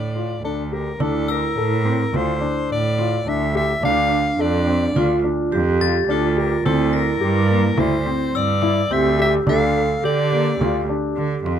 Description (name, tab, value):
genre	contemporary instrumental, chamber music in an uneven meter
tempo	106 BPM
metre	5/4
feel	straight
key	D minor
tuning	A4 = 440 Hz
part	breathy soprano saxophone	melody	0.0-10.9 s	A4 to F5	-24 LUFS	left 2 dB	none
part	clear cello	bass	0.0-11.6 s	D2 to D3	-22 LUFS	right 3 dB	none
part	dark baby grand piano	arpeggios	0.2-11.6 s	Bb3 to A4	-24 LUFS	left 6 dB	none
part	vibraphone with medium hard mallets	second line	1.0-11.6 s	D4 to A4	-24 LUFS	right 4 dB	none
part	frame drum	percussion	1.0-11.6 s	none	-26 LUFS	right 2 dB	none
part	glockenspiel with brass mallets	texture	1.3-9.7 s	E6 to Bb6	-30 LUFS	left 10 dB	none
room	little or no reverb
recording	close, detailed microphones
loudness	-17 LUFS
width	side -9 dB against mid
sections	0.0-1.0 A section; 1.0-11.6 A section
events	none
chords	0.0 Dm; 6.7 C7/D; 9.5 G7(no3)/D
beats	0.44 | 1.00 1.57 2.13 2.70 3.27 | 3.83 4.40 4.96 5.53 6.09 | 6.66 7.22 7.78 8.35 8.91 | 9.48 10.04 10.60 11.17